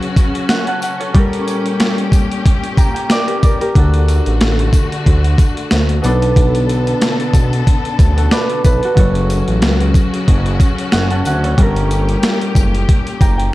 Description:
hip hop, boom-bap hip-hop; 92 BPM; 4/4; swing 55% on 16ths; A4 = 442 Hz
concert harp; accompaniment; 0.0-13.5 s; B2 to Bb5; -19 LUFS; equal; cassette tape, high-pass filter, low-pass filter
clear studio string section; sustained chords; 0.0-13.5 s; Bb2 to A4; -23 LUFS; left 2 dB; high-pass filter, low-pass filter
boom bap sampler-style drum kit; drums; 0.0-13.5 s; hi-hat, kick drum, snare drum; -14 LUFS; equal
tambourine; percussion; 0.2-13.4 s; -34 LUFS; left 6 dB
smooth synth bass; bass; 3.8-13.5 s; F#1 to D2; -15 LUFS; equal
small room ambience; dark, warm production; -12 LUFS; side -17 dB against mid
0.0-13.5 A section
break 0.0-3.8
0.0 F#m; 1.1 Gmadd9; 3.8 D; 6.0 Bm7; 9.0 F#m; 11.6 Gmadd9
0.49 | 1.15 1.80 2.45 3.10 | 3.75 4.41 5.06 5.71 | 6.36 7.01 7.67 8.32 | 8.97 9.62 10.28 10.93 | 11.58 12.23 12.88 13.54

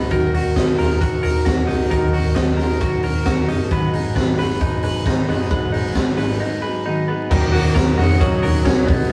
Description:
jangly indie pop; 133 BPM; 4/4; straight; Eb minor; A4 = 440 Hz
fingerpicked plugged-in steel-string acoustic guitar; accompaniment; 0.0-9.1 s; Ab2 to Cb5; -25 LUFS; equal
twelve-string electric guitar; arpeggios; 0.0-9.1 s; Ab2 to Cb5; -26 LUFS; equal
vintage muted fingered electric bass; bass; 0.0-9.1 s; Gb1 to Eb3; -25 LUFS; equal
raw garage drum kit; drums; 0.1-9.0 s; crash cymbal, hi-hat, kick drum, snare drum; -22 LUFS; equal
phased analog pad; sustained chords; 7.7-9.1 s; B3 to Eb6; -34 LUFS; equal; phaser, chorus
wet studio reverb, RT60 0.6 s; rough rehearsal-room recording, vinyl crackle; -18 LUFS; mono
0.0-7.3 A section; 7.3-9.1 B section
break 6.4-7.3
0.1 Ebm; 3.7 Abm7; 7.3 Ebm7
| 0.11 0.56 1.01 1.46 | 1.91 2.36 2.81 3.26 | 3.71 4.16 4.61 5.06 | 5.51 5.96 6.41 6.86 | 7.31 7.76 8.21 8.65 | 9.10

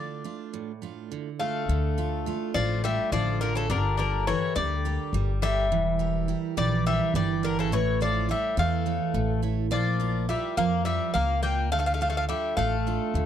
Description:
greek folk, Greek bouzouki band; 210 BPM (eighths); 7/8; straight; D harmonic minor; A4 = 440 Hz
Greek bouzouki; melody; 0.0-13.3 s; A4 to G5; -29 LUFS; left 2 dB
picked steel-string acoustic guitar; accompaniment; 0.0-13.3 s; A2 to D5; -30 LUFS; right 12 dB
Greek bouzouki; second line; 1.4-13.3 s; C#3 to Bb3; -32 LUFS; left 12 dB
upright bass; bass; 1.7-13.3 s; E1 to F2; -28 LUFS; left 1 dB
little or no reverb; dry, close 1970s-style studio recording; -24 LUFS; side -10 dB against mid
0.0-1.7 A section; 1.7-13.3 B section
0.0 Dm; 3.7 Gmadd9; 5.7 Edim; 7.7 A; 9.7 Bb; 11.7 Dm
0.24 0.53 0.82 1.11 1.40 | 1.69 1.98 2.26 2.55 2.84 3.13 3.41 | 3.70 3.99 4.28 4.56 4.85 5.14 5.42 | 5.71 6.00 6.28 6.57 6.86 7.14 7.43 | 7.71 8.00 8.29 8.57 8.86 9.15 9.43 | 9.72 10.00 10.29 10.58 10.86 11.15 11.43 | 11.72 12.01 12.29 12.58 12.86 13.15

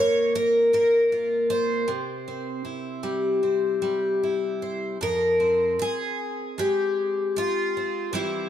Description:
folk, solo fingerstyle acoustic guitar; 78 BPM; 4/4; rubato; F minor; A4 = 439 Hz
picked twelve-string acoustic guitar; solo; 0.0-8.5 s; F2 to Db5; -22 LUFS; left 1 dB
moderate plate reverb, RT60 3.1 s; dark, warm production; -22 LUFS; side -10 dB against mid
0.0-5.0 A section; 5.0-8.5 B section
0.0 Bb5; 1.9 C; 5.0 Fm
0.36 1.13 | 1.90 2.66 3.44 4.23 | 5.02 5.80 6.59 7.37 | 8.14

